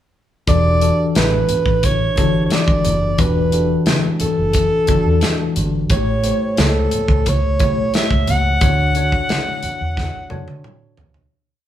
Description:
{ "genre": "lush 1970s-style soul", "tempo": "88 BPM", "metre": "4/4", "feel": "straight", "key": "E dorian", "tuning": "A4 = 440 Hz", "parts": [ { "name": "breathy alto saxophone", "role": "melody", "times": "0.5-10.7 s", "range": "A4 to F#5", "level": "-20 LUFS", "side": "right 1 dB", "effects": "none" }, { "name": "tine electric piano", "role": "accompaniment", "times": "0.5-11.3 s", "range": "D3 to C#5", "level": "-21 LUFS", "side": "left 3 dB", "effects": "medium stereo tremolo" }, { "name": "vintage muted fingered electric bass", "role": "bass", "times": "0.5-11.3 s", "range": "E1 to D3", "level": "-20 LUFS", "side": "equal", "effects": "none" }, { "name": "modern studio drum kit", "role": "drums", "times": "0.5-11.3 s", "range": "hi-hat, kick drum, snare drum, toms", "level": "-20 LUFS", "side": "equal", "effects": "none" }, { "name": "congas", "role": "percussion", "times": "0.5-11.1 s", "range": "none", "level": "-27 LUFS", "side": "right 1 dB", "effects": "none" } ], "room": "wet large studio reverb, RT60 1.0 s", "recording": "band playing live in one room", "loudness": "-14 LUFS", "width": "side -11 dB against mid", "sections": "0.5-11.3 verse", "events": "fade-out 8.6-11.3; drum fill 10.0-11.3", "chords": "0.5 Em11; 5.9 A7; 8.6 Dmaj7" }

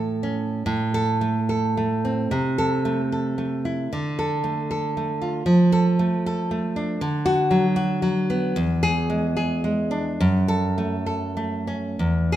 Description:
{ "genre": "romantic piece for solo classical guitar", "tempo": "62-82 BPM", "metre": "2/4", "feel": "rubato", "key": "A minor", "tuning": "A4 = 443 Hz", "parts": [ { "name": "nylon-string guitar", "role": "solo", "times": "0.0-12.4 s", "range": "E2 to A4", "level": "-20 LUFS", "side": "right 1 dB", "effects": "none" } ], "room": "wet concert hall reverb, RT60 1.9 s", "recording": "minimal, uncompressed stereo recording", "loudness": "-21 LUFS", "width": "side -12 dB against mid", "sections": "0.7-12.4 A section", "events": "none", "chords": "0.0 A; 0.7 Am; 2.3 Am/C; 3.9 Dm; 5.5 Dm/F; 7.0 Bm/D; 8.6 E7; 10.2 F#m" }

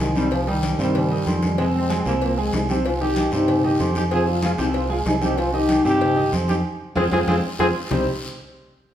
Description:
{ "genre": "latin, salsa", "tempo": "190 BPM", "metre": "4/4", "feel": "straight", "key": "C minor", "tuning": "A4 = 440 Hz", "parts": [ { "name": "warm trombone section", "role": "melody", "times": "0.0-8.1 s", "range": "C3 to C5", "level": "-22 LUFS", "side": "left 1 dB", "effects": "none" }, { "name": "warm grand piano", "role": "accompaniment", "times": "0.0-8.1 s", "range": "C3 to C6", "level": "-26 LUFS", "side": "right 1 dB", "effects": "none" }, { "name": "fingered electric bass", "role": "bass", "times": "0.0-8.1 s", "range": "C2 to G2", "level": "-25 LUFS", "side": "equal", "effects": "none" }, { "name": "congas", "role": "percussion", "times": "0.0-8.0 s", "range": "none", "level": "-28 LUFS", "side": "equal", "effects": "none" }, { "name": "cowbell and bongos", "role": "percussion", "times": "0.0-8.0 s", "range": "none", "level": "-33 LUFS", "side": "left 6 dB", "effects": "none" }, { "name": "guiro", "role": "percussion", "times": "0.0-8.0 s", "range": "none", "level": "-37 LUFS", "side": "left 4 dB", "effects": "none" }, { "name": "agogo bells and timbales", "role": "percussion", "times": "0.3-8.0 s", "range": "none", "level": "-31 LUFS", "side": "right 6 dB", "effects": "none" } ], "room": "wet large studio reverb, RT60 1.2 s", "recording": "band playing live in one room", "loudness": "-18 LUFS", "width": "side -10 dB against mid", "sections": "0.0-2.8 A section; 2.8-7.9 B section; 7.9-8.9 C section", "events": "band accent 6.6-7.9; drum fill 7.1-7.9", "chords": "0.3 Cm; 1.6 Fm; 2.8 Cm; 4.1 Fm; 5.4 Cm; 6.6 Fm; 7.9 Cm" }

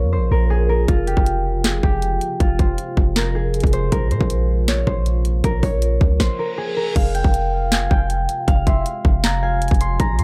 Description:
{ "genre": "hip hop, trap", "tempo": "158 BPM", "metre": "4/4", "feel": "half-time", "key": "F minor", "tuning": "A4 = 441 Hz", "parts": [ { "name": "concert harp", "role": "melody", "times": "0.0-10.2 s", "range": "F4 to C6", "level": "-26 LUFS", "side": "equal", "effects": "digital delay" }, { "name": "deep dark ambient pad", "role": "sustained chords", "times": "0.0-10.2 s", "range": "C3 to F4", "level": "-33 LUFS", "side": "equal", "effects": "chorus, built-in reverb" }, { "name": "warm 808-style bass", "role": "bass", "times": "0.0-10.2 s", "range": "F1 to Bb2", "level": "-22 LUFS", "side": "equal", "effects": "none" }, { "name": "trap drum kit", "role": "drums", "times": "0.9-10.2 s", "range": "crash cymbal, handclaps, hi-hat, kick drum, snare drum", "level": "-21 LUFS", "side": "equal", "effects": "none" }, { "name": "reverse cymbal", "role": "sound effects", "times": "6.3-7.0 s", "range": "none", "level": "-35 LUFS", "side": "equal", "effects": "none" }, { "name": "soft octave-layered synth lead", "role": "second line", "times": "7.5-9.6 s", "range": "E5 to F5", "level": "-31 LUFS", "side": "equal", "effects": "chorus, digital delay" } ], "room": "little or no reverb", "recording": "dark, warm production", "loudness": "-19 LUFS", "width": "mono", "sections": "0.0-7.0 A section; 7.0-10.2 B section", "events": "stop 6.2-7.0; reverse cymbal 6.3-7.0", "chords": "0.0 Bbm; 0.9 Fm; 3.9 Bbm; 7.0 Fm" }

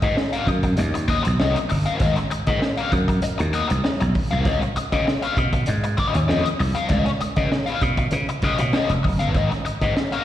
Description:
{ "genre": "funk", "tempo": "98 BPM", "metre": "4/4", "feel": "straight", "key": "unclear", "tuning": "A4 = 439 Hz", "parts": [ { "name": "biting overdriven guitar", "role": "accompaniment", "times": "0.0-10.2 s", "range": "C4 to F5", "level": "-24 LUFS", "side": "left 5 dB", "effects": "wah, slapback echo" }, { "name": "slap bass", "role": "bass", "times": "0.0-9.9 s", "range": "F1 to Db3", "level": "-22 LUFS", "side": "right 1 dB", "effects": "none" }, { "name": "crunchy breakbeat drum kit", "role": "drums", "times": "0.0-10.2 s", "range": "hi-hat, kick drum, snare drum", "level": "-24 LUFS", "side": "equal", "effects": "none" } ], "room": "light reverb, small room ambience", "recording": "live gig heard through the venue's PA, recital hall reverb", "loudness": "-19 LUFS", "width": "side -12 dB against mid", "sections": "0.0-10.2 A section", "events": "none", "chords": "0.0 Ab9 (rootless); 4.5 Db9; 9.3 Ab9" }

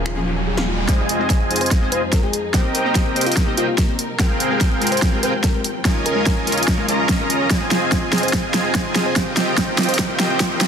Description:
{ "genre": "future bass", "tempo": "145 BPM", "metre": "4/4", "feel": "half-time", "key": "unclear", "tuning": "A4 = 440 Hz", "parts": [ { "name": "bell-like FM electric piano", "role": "melody", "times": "0.0-10.0 s", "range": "F4 to C5", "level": "-27 LUFS", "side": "left 1 dB", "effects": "chorus, vintage 12-bit sampler grit, sidechain pumping, low-pass filter, tape echo" }, { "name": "dark symphonic string section", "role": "sustained chords", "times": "0.0-10.7 s", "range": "C2 to G5", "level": "-32 LUFS", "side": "left 1 dB", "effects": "none" }, { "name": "saturated sub bass", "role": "bass", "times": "0.0-0.9 s", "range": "Eb1", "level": "-25 LUFS", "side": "equal", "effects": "sidechain pumping" }, { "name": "riser", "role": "sound effects", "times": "0.0-0.9, 9.1-10.7 s", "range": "none", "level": "-28 LUFS", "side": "right 2 dB", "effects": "none" }, { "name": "soft round pluck", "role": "arpeggios", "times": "0.1-0.8, 7.5-10.7 s", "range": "F4 to C6", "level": "-32 LUFS", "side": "left 4 dB", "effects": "chorus, sidechain pumping, tape echo" }, { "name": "big-room dance drum kit", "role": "drums", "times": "0.1-10.7 s", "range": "finger snaps, hi-hat, snare drum", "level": "-21 LUFS", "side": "right 1 dB", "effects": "overdrive" }, { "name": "glassy digital keys", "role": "accompaniment", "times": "0.2-7.3 s", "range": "F3 to C5", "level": "-26 LUFS", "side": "left 4 dB", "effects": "chorus, sidechain pumping, tape echo" }, { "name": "dense compressed supersaw", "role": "riff", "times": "0.9-10.7 s", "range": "C4 to Bb5", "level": "-21 LUFS", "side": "right 1 dB", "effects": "sidechain pumping, low-pass filter, tape echo" }, { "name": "electronic kick drum", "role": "drums", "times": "0.9-10.5 s", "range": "none", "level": "-20 LUFS", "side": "equal", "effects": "none" } ], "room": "light reverb, digital ambience", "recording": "dense, heavily limited modern master, high-pass filter", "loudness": "-16 LUFS", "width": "side -7 dB against mid", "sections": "0.9-10.7 A section", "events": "riser 0.0-0.9; build-up 0.9-10.7; drum fill 0.9-10.7; filter sweep on FM electric piano 0.9-10.7", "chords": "0.0 Eb9sus4; 0.9 Fm7; 2.5 Cm7; 4.2 Abmaj13; 5.9 Eb9sus4; 7.5 Fm7; 9.2 Cm7" }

